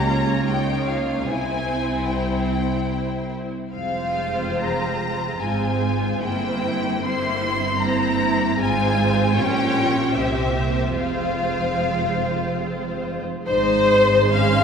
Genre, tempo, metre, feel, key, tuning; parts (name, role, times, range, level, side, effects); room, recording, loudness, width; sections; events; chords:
classical, slow romantic movement for string orchestra; 67-79 BPM; 3/4; rubato; F minor; A4 = 436 Hz
rich studio violin section; melody; 0.0-14.6 s; E5 to C6; -26 LUFS; left 3 dB
rich studio violin section; second line; 0.0-14.6 s; E4 to F5; -24 LUFS; left 2 dB
rich studio viola section; accompaniment; 0.0-14.6 s; Ab3 to Ab4; -26 LUFS; right 3 dB
rich studio cello section; bass; 0.0-14.6 s; C2 to C3; -28 LUFS; right 2 dB
rich studio double bass section; bass; 0.0-14.6 s; F1 to Db2; -27 LUFS; right 2 dB
wet scoring stage reverb, RT60 2.1 s; heard from further back in the room; -19 LUFS; side -6 dB against mid
0.0-13.5 A section; 13.5-14.6 B section
0.0 Bbm/Db; 1.3 C; 3.7 Fm; 6.2 C7/G; 8.6 Fm/Ab; 9.4 Gm7b5/Bb; 10.2 C7; 11.0 Fm; 13.5 Ab